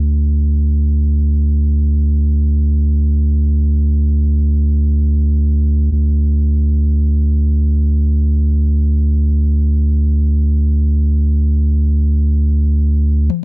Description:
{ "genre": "afro house", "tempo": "free time", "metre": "none", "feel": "none", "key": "unclear", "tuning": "A4 = 440 Hz", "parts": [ { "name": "warm sub bass", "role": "bass", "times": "0.0-13.3 s", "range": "D2", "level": "-12 LUFS", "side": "equal", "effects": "none" }, { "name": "electronic toms", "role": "drums", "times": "13.3-13.4 s", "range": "none", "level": "-17 LUFS", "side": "left 16 dB", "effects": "overdrive, low-pass filter on hats, low-pass filter on perc, low-pass filter on snare, low-pass filter on toms" } ], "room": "little or no reverb", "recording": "none", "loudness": "-12 LUFS", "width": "side -29 dB against mid", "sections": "0.0-13.4 A section", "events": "none", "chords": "none" }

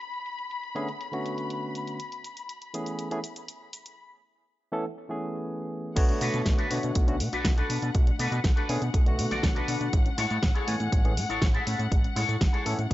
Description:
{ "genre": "nu-disco, nu disco", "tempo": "121 BPM", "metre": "4/4", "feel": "straight", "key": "B dorian", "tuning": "A4 = 440 Hz", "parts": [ { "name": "muted studio string section", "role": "sustained chords", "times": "0.0-12.9 s", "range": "F#5 to B5", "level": "-37 LUFS", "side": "left 4 dB", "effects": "sidechain pumping" }, { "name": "pop drum kit", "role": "drums", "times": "0.0-12.9 s", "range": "crash cymbal, hi-hat, shaker, snare drum", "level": "-33 LUFS", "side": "equal", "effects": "low-pass filter on hats, studio reverb, low-pass filter on snare, low-pass filter on cymbals, low-pass filter on perc" }, { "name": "barky tine electric piano", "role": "accompaniment", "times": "0.8-12.8 s", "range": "D3 to G#5", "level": "-32 LUFS", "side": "equal", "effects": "none" }, { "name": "soft round pluck", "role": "arpeggios", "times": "6.0-12.9 s", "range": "G#3 to A4", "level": "-37 LUFS", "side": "left 4 dB", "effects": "chorus, sidechain pumping, analog delay" }, { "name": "fat analog bass", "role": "bass", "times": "6.0-12.9 s", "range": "A1 to B2", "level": "-30 LUFS", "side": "equal", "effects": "tube saturation" }, { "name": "electronic kick drum", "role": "drums", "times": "6.0-12.9 s", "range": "none", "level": "-24 LUFS", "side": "equal", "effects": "studio reverb" }, { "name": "electric guitar with an envelope filter", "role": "riff", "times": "6.2-12.9 s", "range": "D4 to E5", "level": "-32 LUFS", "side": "left 1 dB", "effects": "analog chorus, tape echo" } ], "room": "little or no reverb", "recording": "nothing above 7.6 kHz", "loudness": "-25 LUFS", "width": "side -16 dB against mid", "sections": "0.0-6.0 A section; 6.0-12.9 B section", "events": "filter sweep on string section 0.0-6.0; drop 6.0-12.9", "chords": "0.0 Bm7; 2.0 Amaj7; 6.0 Bm7; 9.9 Amaj7" }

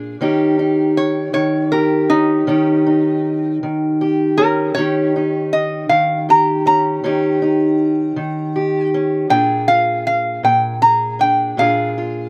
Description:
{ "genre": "acoustic country blues, solo or duo", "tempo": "53 BPM (dotted quarters)", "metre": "12/8", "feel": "straight", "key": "unclear", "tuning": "A4 = 438 Hz", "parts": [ { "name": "lap resonator guitar", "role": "melody", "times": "0.0-12.3 s", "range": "Eb4 to Bb5", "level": "-18 LUFS", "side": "equal", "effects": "none" }, { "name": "fingerpicked steel-string acoustic guitar", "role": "accompaniment", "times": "0.0-12.3 s", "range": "Bb2 to Ab4", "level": "-19 LUFS", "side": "equal", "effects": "none" } ], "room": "little or no reverb", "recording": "recorded outdoors, with no room sound", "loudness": "-16 LUFS", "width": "mono", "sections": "0.0-12.3 A section", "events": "resonator guitar played with a steel bar solo 0.0-12.3", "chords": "0.2 Eb7; 9.3 Bb7" }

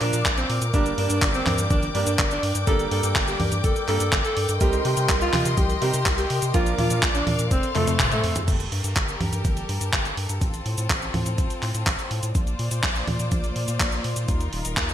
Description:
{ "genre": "italo disco", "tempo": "124 BPM", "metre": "4/4", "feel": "straight", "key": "G minor", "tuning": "A4 = 440 Hz", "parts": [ { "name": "breathy alto saxophone", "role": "melody", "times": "0.0-8.4 s", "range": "A3 to A4", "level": "-27 LUFS", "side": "equal", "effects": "ping-pong delay" }, { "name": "rich studio string section", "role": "sustained chords", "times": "0.0-14.9 s", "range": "Eb3 to D6", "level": "-30 LUFS", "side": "left 3 dB", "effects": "none" }, { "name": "bright grand piano", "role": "stabs", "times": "0.0-7.9 s", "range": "F3 to Bb4", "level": "-31 LUFS", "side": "right 4 dB", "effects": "none" }, { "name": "round analog bass", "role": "bass", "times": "0.0-14.9 s", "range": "Eb1 to C3", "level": "-27 LUFS", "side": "equal", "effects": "none" }, { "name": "clean 12-bit digital drum machine", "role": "drums", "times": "0.0-14.9 s", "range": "cabasa, congas, crash cymbal, handclaps, hi-hat, toms", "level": "-26 LUFS", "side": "equal", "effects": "small room reverb, gated reverb" }, { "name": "electronic kick drum", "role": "drums", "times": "0.3-14.9 s", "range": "none", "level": "-25 LUFS", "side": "equal", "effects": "overdrive, small room reverb" } ], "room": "moderate plate reverb, RT60 1.7 s, digital ambience", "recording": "bright 1980s-style digital production", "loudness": "-20 LUFS", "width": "side -10 dB against mid", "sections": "0.0-8.5 A section; 8.5-14.9 B section", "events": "drum fill 7.8-8.5; band accent 8.0", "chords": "0.0 Bb; 0.7 Gm; 4.6 Cm7; 6.5 Bb; 7.5 F; 8.5 Gmadd9; 10.4 F/A; 12.4 Bbadd9; 14.3 Ebsus2" }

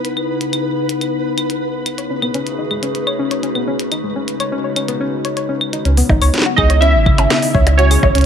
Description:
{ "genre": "IDM", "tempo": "124 BPM", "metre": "4/4", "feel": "straight", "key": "C# minor", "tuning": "A4 = 440 Hz", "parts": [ { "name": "warbly tape-like pad", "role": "sustained chords", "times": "0.0-8.3 s", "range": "C#3 to G#4", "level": "-22 LUFS", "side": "left 2 dB", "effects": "chorus, built-in reverb, sidechain pumping" }, { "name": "glitchy drum kit", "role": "drums", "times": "0.0-8.2 s", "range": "claves, hi-hat, percussion blips, snare drum", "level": "-20 LUFS", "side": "equal", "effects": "none" }, { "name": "flickering grainy texture", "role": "texture", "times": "0.0-5.9 s", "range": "B4", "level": "-27 LUFS", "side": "right 2 dB", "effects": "built-in reverb" }, { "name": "soft round pluck", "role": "arpeggios", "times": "2.0-8.2 s", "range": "C#3 to C#5", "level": "-21 LUFS", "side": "left 4 dB", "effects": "chorus, cassette tape, tape echo" }, { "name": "warm sub bass", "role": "bass", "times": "5.9-8.2 s", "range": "G#1 to C#2", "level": "-13 LUFS", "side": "right 1 dB", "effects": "none" }, { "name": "electronic kick drum", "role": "drums", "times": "6.1-8.1 s", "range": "none", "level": "-16 LUFS", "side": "right 1 dB", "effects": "none" }, { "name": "warbly lo-fi synth keys", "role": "melody", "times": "6.6-8.3 s", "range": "C#5 to E5", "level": "-16 LUFS", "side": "right 2 dB", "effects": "chorus, tape echo" } ], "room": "light reverb", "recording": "faint mains hum", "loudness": "-14 LUFS", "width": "side -8 dB against mid", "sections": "0.0-5.9 A section; 5.9-8.3 B section", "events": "none", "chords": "0.0 C#m9; 2.0 B13; 3.9 G#7sus4; 5.9 C#m9" }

